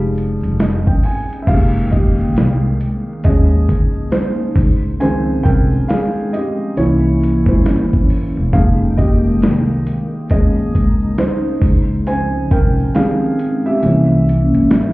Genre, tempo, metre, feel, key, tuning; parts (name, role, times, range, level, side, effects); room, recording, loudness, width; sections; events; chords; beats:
lo-fi hip hop; 68 BPM; 4/4; swing 61% on 16ths; F minor; A4 = 440 Hz
felt-muted upright piano; accompaniment; 0.0-14.9 s; Eb3 to Ab5; -18 LUFS; right 1 dB; low-pass filter
upright bass; bass; 0.0-14.7 s; E1 to Eb2; -16 LUFS; equal
tube shaker; percussion; 0.1-14.9 s; -62 LUFS; left 4 dB
dusty soul sampler-style drum kit; drums; 0.2-14.9 s; crash cymbal, hi-hat, kick drum, snare drum; -16 LUFS; equal; vintage 12-bit sampler grit
hollow soft pad; sustained chords; 1.9-14.9 s; Db3 to G5; -22 LUFS; left 1 dB; ensemble chorus, low-pass filter
studio ambience; heard muffled through a wall, club reverb, vinyl crackle, EQ; -13 LUFS; side -20 dB against mid
0.0-1.5 A section; 1.5-14.9 B section
felt piano solo 1.5-14.9
0.0 Fm9; 1.5 Fm11; 3.2 Eb7sus4; 4.6 Dbmaj9#11; 6.8 C7b9; 8.5 Fm11; 10.3 Eb7sus4; 11.6 Dbmaj9#11; 13.8 C7b9
0.59 | 1.47 2.35 3.23 4.12 | 5.00 5.88 6.76 7.65 | 8.53 9.41 10.29 11.18 | 12.06 12.94 13.82 14.71